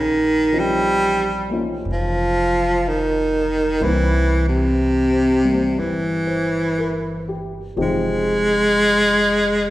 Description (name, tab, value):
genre	jazz ballad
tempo	61 BPM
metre	4/4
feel	swing 66% on 8ths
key	unclear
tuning	A4 = 440 Hz
part	clear baritone saxophone	melody	0.0-9.7 s	C3 to Ab3	-17 LUFS	equal	none
part	upright bass	bass	0.0-9.7 s	F1 to C2	-26 LUFS	equal	none
part	dark grand piano	accompaniment	0.5-9.7 s	Eb3 to C5	-26 LUFS	left 1 dB	none
room	wet recital hall reverb, RT60 1.6 s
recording	recorded in a church or concert hall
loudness	-16 LUFS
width	side -15 dB against mid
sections	0.0-9.7 A section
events	none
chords	0.0 Bbmadd9; 3.8 C7; 7.8 Fm9